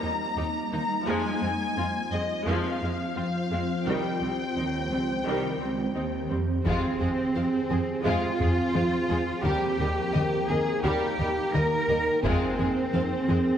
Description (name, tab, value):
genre	cinematic, hybrid orchestral and electronic film score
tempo	86 BPM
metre	4/4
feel	straight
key	F minor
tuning	A4 = 439 Hz
part	rich symphonic violin section	melody	0.0-13.4 s	Ab4 to Bb5	-34 LUFS	left 4 dB	none
part	clear symphonic viola section	accompaniment	0.0-13.4 s	Eb3 to G4	-34 LUFS	equal	none
part	swarming drone	sustained chords	0.0-13.6 s	Eb3 to G5	-32 LUFS	equal	built-in reverb
part	rich symphonic cello section	bass	0.0-13.6 s	C2 to Bb4	-29 LUFS	right 1 dB	none
part	warm symphonic violin section	second line	6.7-13.4 s	F4 to Eb5	-34 LUFS	left 2 dB	none
part	warm French horn section	sustained chords	6.7-13.6 s	Bb3 to Bb4	-33 LUFS	left 1 dB	none
part	plucky analog bass	riff	6.7-13.5 s	Eb2 to F3	-30 LUFS	left 1 dB	none
part	rich symphonic double bass section	bass	6.7-13.4 s	Eb2 to F2	-33 LUFS	right 2 dB	none
part	taiko ensemble	drums	6.7-8.0, 12.2-12.9 s	none	-34 LUFS	equal	none
room	wet concert hall reverb, RT60 2.2 s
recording	none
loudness	-24 LUFS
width	side -9 dB against mid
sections	0.0-6.7 A section; 6.7-13.6 A section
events	none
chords	0.0 Eb; 1.1 Fm; 3.9 Cm; 6.7 Fm; 9.4 Eb; 12.2 Fm